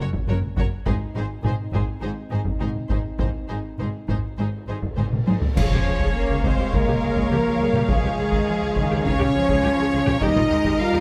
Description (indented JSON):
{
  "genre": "cinematic, epic orchestral film score",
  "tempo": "103 BPM",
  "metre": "4/4",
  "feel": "straight",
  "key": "unclear",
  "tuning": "A4 = 439 Hz",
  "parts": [
    { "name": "clear symphonic violin section", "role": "melody", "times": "0.0-11.0 s", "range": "Ab4 to F5", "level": "-34 LUFS", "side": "equal", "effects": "none" },
    { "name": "dark symphonic violin section", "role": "second line", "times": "0.0-11.0 s", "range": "Ab4 to Bb5", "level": "-36 LUFS", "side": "equal", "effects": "none" },
    { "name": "rich symphonic viola section", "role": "accompaniment", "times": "0.0-11.0 s", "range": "Eb4 to Db5", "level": "-34 LUFS", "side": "equal", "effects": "none" },
    { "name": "dark French horn section", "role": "sustained chords", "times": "0.0-11.0 s", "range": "Ab3 to F4", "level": "-28 LUFS", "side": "equal", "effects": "none" },
    { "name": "clear studio cello section", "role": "bass", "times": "0.0-11.0 s", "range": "Gb2 to Bb3", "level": "-31 LUFS", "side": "equal", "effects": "none" },
    { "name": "rich symphonic double bass section", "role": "bass", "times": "0.0-11.0 s", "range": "Gb1 to Eb2", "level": "-30 LUFS", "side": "equal", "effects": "none" },
    { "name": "taiko ensemble", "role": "drums", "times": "0.1-11.0 s", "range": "none", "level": "-27 LUFS", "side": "equal", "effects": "none" },
    { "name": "cymbal swell, clash cymbals and concert bass drum", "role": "percussion", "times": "3.2-6.7 s", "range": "none", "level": "-32 LUFS", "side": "equal", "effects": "none" },
    { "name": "reverse cymbal and sub drop", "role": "sound effects", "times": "5.5-7.9 s", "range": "none", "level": "-36 LUFS", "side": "equal", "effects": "none" },
    { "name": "flute section", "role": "second line", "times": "5.6-11.0 s", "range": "Ab4 to F5", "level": "-34 LUFS", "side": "equal", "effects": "none" }
  ],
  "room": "light reverb",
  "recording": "close, detailed microphones",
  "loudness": "-22 LUFS",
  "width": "mono",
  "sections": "0.0-5.6 A section; 5.6-11.0 B section",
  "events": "drum fill 5.0-5.6; reverse cymbal 5.5; band accent 5.6-6.2; impact 5.6-7.9",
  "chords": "0.0 Gb; 0.9 Ab; 5.6 Db; 10.2 Eb",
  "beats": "0.29 | 0.87 1.45 2.03 2.61 | 3.21 3.80 4.39 4.99 | 5.58 6.16 6.75 7.33 | 7.91 8.49 9.07 9.65 | 10.23 10.80"
}